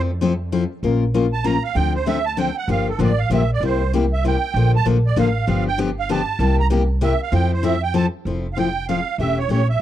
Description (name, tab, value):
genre	acoustic string swing (jazz manouche)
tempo	194 BPM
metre	3/4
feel	swing 60% on 8ths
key	F major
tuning	A4 = 441 Hz
part	picked steel-string acoustic guitar	accompaniment	0.0-9.6 s	C3 to Bb4	-21 LUFS	left 5 dB	none
part	upright bass	bass	0.0-9.8 s	E1 to F2	-20 LUFS	right 1 dB	none
part	musette accordion	melody	1.3-9.8 s	A4 to Bb5	-24 LUFS	right 7 dB	none
room	small room ambience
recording	dry, close 1970s-style studio recording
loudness	-17 LUFS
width	side -12 dB against mid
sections	0.8-8.3 A section; 8.3-9.8 B section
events	accordion solo 0.0-8.3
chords	0.0 Fmaj7; 0.8 Bbm; 1.8 Dm7; 2.7 Gm9; 3.6 C7; 4.5 Bbmaj7; 5.5 G7; 6.4 C7; 7.3 Fmaj7; 9.2 A7/E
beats	0.21 0.52 | 0.83 1.14 1.45 | 1.76 2.07 2.38 | 2.69 3.00 3.31 | 3.62 3.92 4.23 | 4.54 4.85 5.16 | 5.47 5.78 6.09 | 6.40 6.71 7.02 | 7.33 7.64 7.95 | 8.25 8.56 8.87 | 9.18 9.49 9.80